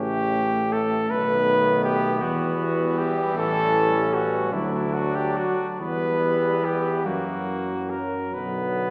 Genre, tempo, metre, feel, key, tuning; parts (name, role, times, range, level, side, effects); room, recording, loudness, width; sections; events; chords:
classical, hymn-like piece for brass band; 44-54 BPM (dotted quarters); 6/8; rubato; B minor; A4 = 440 Hz
warm flugelhorn; melody; 0.0-8.9 s; E4 to B4; -27 LUFS; equal
warm flugelhorn; second line; 0.0-8.9 s; A#3 to D4; -34 LUFS; equal
bright trombone; accompaniment; 0.0-8.9 s; C#3 to F#3; -34 LUFS; equal
mellow trombone section; accompaniment; 0.0-8.9 s; F#3 to A3; -33 LUFS; equal
clear tuba; bass; 0.0-8.9 s; A1 to F#2; -30 LUFS; equal
wet scoring stage reverb, RT60 1.9 s; heard from further back in the room; -24 LUFS; mono
0.0-8.9 A section
0.0 F#m/A (rootless); 1.1 B7; 2.2 Em; 3.4 A7; 4.5 D; 5.8 Em; 7.1 F#7; 8.3 Bm